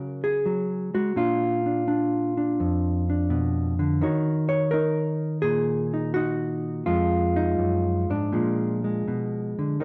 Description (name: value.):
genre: solo jazz.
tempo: 84 BPM.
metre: 4/4.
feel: swing 69% on 8ths, rubato.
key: unclear.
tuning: A4 = 440 Hz.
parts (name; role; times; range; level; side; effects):
hollow-body jazz guitar; solo; 0.0-9.8 s; F2 to Db5; -25 LUFS; equal; none.
room: moderate large studio reverb, RT60 1.1 s.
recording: band playing live in one room.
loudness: -25 LUFS.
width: mono.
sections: 0.0-9.8 A section.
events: none.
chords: 0.0 Gb5; 1.2 Bb; 4.0 Ebm7; 6.9 Fm7; 8.3 Bb7.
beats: 0.46 | 1.18 1.89 2.60 3.31 | 4.01 4.72 5.43 6.15 | 6.87 7.58 8.32 9.06 | 9.80.